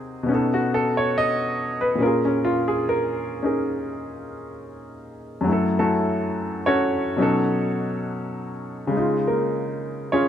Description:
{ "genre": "jazz ballad", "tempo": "70 BPM", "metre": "4/4", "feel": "swing 66% on 8ths", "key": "unclear", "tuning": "A4 = 440 Hz", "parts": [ { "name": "clear baby grand piano", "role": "solo", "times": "0.0-10.3 s", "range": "Gb2 to D#5", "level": "-21 LUFS", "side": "equal", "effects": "none" } ], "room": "moderate plate reverb, RT60 2.5 s", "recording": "none", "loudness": "-20 LUFS", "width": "side -9 dB against mid", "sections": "0.0-10.3 A section", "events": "none", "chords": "0.3 B9; 2.0 Bbm7; 5.5 Gbm7; 7.2 B9; 8.9 Dbadd9" }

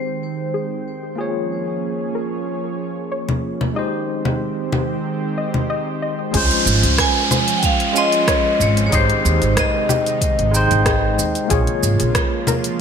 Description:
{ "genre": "sunset chillout", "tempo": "93 BPM", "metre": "4/4", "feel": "swing 53% on 16ths", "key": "unclear", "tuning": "A4 = 439 Hz", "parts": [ { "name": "vibraphone with medium hard mallets", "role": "melody", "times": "0.0-0.8, 7.0-11.2 s", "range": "C5 to Ab5", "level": "-22 LUFS", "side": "left 1 dB", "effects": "digital delay" }, { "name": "barky tine electric piano", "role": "accompaniment", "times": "0.0-12.8 s", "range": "Ab3 to C6", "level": "-23 LUFS", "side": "moving between left 4 dB and right 5 dB", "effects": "medium stereo tremolo, auto-pan, ping-pong delay" }, { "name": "lush unison pad", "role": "sustained chords", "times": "0.0-12.8 s", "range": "C3 to G5", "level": "-26 LUFS", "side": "right 2 dB", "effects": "chorus" }, { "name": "soft round pluck", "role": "arpeggios", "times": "0.5-12.8 s", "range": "G4 to Eb5", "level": "-29 LUFS", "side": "left 4 dB", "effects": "chorus, ping-pong delay" }, { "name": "deep house drum kit", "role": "drums", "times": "3.3-12.8 s", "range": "congas, hi-hat, rim click, shaker", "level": "-22 LUFS", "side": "equal", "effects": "overdrive, gated reverb" }, { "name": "upright bass", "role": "bass", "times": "6.3-12.1 s", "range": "Ab1 to Eb2", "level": "-19 LUFS", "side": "right 1 dB", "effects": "none" }, { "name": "electronic kick drum", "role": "drums", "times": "6.3-12.3 s", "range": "none", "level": "-22 LUFS", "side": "right 1 dB", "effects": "overdrive" }, { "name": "downlifter", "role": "sound effects", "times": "6.3-11.5 s", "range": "none", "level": "-23 LUFS", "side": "right 1 dB", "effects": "none" } ], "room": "moderate plate reverb, RT60 1.7 s, digital ambience", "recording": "bright 1980s-style digital production", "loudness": "-16 LUFS", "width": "side -7 dB against mid", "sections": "0.0-6.3 A section; 6.3-12.8 B section", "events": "filter sweep on tine electric piano 0.0-6.3; filter sweep on analog synth pad 0.0-6.3; filter sweep on synth arpeggio sound 0.0-6.3", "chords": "0.0 Abmaj7; 1.2 Bbm7; 3.8 Abmaj7; 6.3 Dbmaj7; 8.9 Abmaj7; 11.5 Bbm7" }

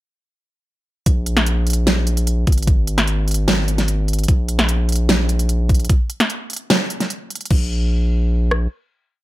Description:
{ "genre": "future bass", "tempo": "149 BPM", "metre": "4/4", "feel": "half-time", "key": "unclear", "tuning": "A4 = 441 Hz", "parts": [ { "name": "saturated sub bass", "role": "bass", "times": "1.1-8.7 s", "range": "Ab1 to Bb1", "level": "-18 LUFS", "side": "equal", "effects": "sidechain pumping" }, { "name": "pop drum kit", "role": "drums", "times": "1.1-8.6 s", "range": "kick drum, rim click", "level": "-16 LUFS", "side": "equal", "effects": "small room ambience" }, { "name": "pop drum kit", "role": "drums", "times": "1.1-7.6 s", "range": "crash cymbal, hi-hat, snare drum", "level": "-20 LUFS", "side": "equal", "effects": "small room ambience" } ], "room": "little or no reverb", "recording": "none", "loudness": "-16 LUFS", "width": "side -16 dB against mid", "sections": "1.1-7.5 drop; 7.5-9.2 final note", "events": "drop 1.1-7.5", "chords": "none" }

